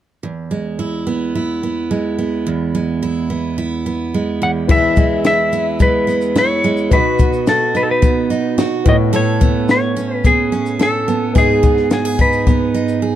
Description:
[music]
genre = acoustic pop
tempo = 108 BPM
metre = 4/4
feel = straight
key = E major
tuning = A4 = 440 Hz
[part]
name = picked steel-string acoustic guitar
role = accompaniment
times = 0.2-13.2 s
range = E2 to A4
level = -17 LUFS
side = right 4 dB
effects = none
[part]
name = clean lap steel guitar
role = melody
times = 4.4-13.0 s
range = G#4 to F#5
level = -17 LUFS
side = left 2 dB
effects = none
[part]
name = clear upright piano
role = accompaniment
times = 4.7-13.2 s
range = A3 to E5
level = -24 LUFS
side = left 6 dB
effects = none
[part]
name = compact cocktail drum kit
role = drums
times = 4.7-13.0 s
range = crash cymbal, kick drum, shaker, snare drum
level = -15 LUFS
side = left 2 dB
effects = none
[sound]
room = little or no reverb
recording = dark, warm production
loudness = -13 LUFS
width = side -11 dB against mid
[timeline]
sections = 0.2-4.7 A section; 4.7-13.2 B section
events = none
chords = 0.2 E; 4.4 N.C.; 4.7 E; 6.9 B; 8.9 Aadd9; 11.4 G#m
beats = | 0.24 0.80 1.35 1.91 | 2.46 3.02 3.58 4.13 | 4.69 5.25 5.80 6.36 | 6.91 7.47 8.02 8.58 | 9.13 9.69 10.24 10.80 | 11.36 11.91 12.47 13.02

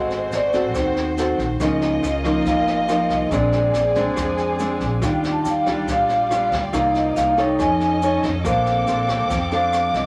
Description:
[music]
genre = bossa nova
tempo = 140 BPM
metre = 4/4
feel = straight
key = Bb major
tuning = A4 = 439 Hz
[part]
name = vibraphone with medium mallets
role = melody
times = 0.0-10.1 s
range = C5 to A5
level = -24 LUFS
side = equal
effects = none
[part]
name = nylon-string guitar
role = accompaniment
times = 0.0-10.1 s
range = Ab2 to Db5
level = -25 LUFS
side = equal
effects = none
[part]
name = dark studio string section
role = sustained chords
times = 0.0-10.1 s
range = G3 to D6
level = -30 LUFS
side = equal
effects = none
[part]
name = upright bass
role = bass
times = 0.0-10.1 s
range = Ab1 to F2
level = -30 LUFS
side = equal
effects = none
[part]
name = jazz brush drum kit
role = drums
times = 0.1-10.0 s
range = kick drum, rim click, snare drum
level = -33 LUFS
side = equal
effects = none
[part]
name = egg shaker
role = percussion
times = 0.1-10.1 s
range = none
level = -48 LUFS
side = equal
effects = none
[sound]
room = wet small room reverb, RT60 0.5 s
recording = none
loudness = -20 LUFS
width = mono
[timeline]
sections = 0.0-10.1 A section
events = none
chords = 0.0 Ab7b9; 1.6 Db69; 3.3 Bb9; 5.0 Ebmaj9; 6.7 Cm11; 7.6 F7alt; 8.4 Bbmaj9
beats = 0.32 0.75 1.18 | 1.60 2.03 2.46 2.89 | 3.32 3.74 4.17 4.60 | 5.03 5.45 5.88 6.31 | 6.74 7.17 7.59 8.02 | 8.45 8.88 9.30 9.73

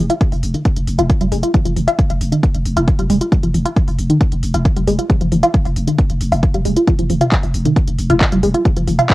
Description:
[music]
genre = driving peak-time techno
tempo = 135 BPM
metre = 4/4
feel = straight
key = F minor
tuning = A4 = 435 Hz
[part]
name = growling 808-style bass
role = bass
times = 0.0-9.0 s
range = F1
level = -20 LUFS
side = equal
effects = tube saturation, sidechain pumping, low-pass filter
[part]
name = tight sequenced synth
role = riff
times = 0.1-9.0 s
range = Eb3 to F4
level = -17 LUFS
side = equal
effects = chorus, phaser, tube saturation, vintage 12-bit sampler grit, sidechain pumping, cassette tape, tape echo
[part]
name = techno drum kit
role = drums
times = 0.1-9.1 s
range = handclaps, hi-hat, toms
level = -23 LUFS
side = equal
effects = overdrive, sidechain pumping on hats, cassette tape, sidechain pumping on toms
[part]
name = electronic kick drum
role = drums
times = 0.2-9.1 s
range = none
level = -15 LUFS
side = equal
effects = overdrive, cassette tape
[sound]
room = light reverb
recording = home recording on cassette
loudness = -13 LUFS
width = side -18 dB against mid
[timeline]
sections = 0.0-9.1 A section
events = none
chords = none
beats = 0.21 0.65 1.10 | 1.54 1.99 2.43 2.88 | 3.32 3.76 4.21 4.65 | 5.10 5.54 5.99 6.43 | 6.88 7.32 7.76 8.21 | 8.65 9.10

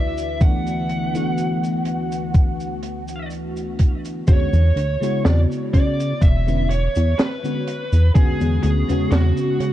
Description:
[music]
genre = vaporwave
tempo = 62 BPM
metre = 4/4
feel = straight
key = unclear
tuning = A4 = 440 Hz
[part]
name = smooth overdriven lead guitar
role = melody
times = 0.0-9.7 s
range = F#4 to F#5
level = -27 LUFS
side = right 1 dB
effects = vintage 12-bit sampler grit, tape echo
[part]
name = warbly tape-like pad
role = sustained chords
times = 0.0-4.2 s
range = D2 to B4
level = -33 LUFS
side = right 1 dB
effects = chorus, built-in reverb
[part]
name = open jazz drum kit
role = drums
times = 0.2-9.7 s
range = cabasa, hi-hat, snare drum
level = -27 LUFS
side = right 1 dB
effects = vintage 12-bit sampler grit
[part]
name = FM electric piano with soft pad layer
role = accompaniment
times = 0.4-9.7 s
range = C#3 to F#4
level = -24 LUFS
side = left 1 dB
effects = analog chorus
[part]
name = electronic kick drum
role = drums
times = 0.4-8.4 s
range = none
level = -15 LUFS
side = equal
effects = vintage 12-bit sampler grit
[part]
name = chorused synth bass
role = bass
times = 4.3-9.7 s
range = E1 to C#3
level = -18 LUFS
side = equal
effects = none
[sound]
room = studio reverb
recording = dark, warm production, cassette tape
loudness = -17 LUFS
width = side -13 dB against mid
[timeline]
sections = 0.0-4.3 A section; 4.3-9.7 B section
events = none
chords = 0.0 D6; 4.3 E13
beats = | 0.41 1.38 2.35 3.31 | 4.28 5.25 6.22 7.19 | 8.15 9.12

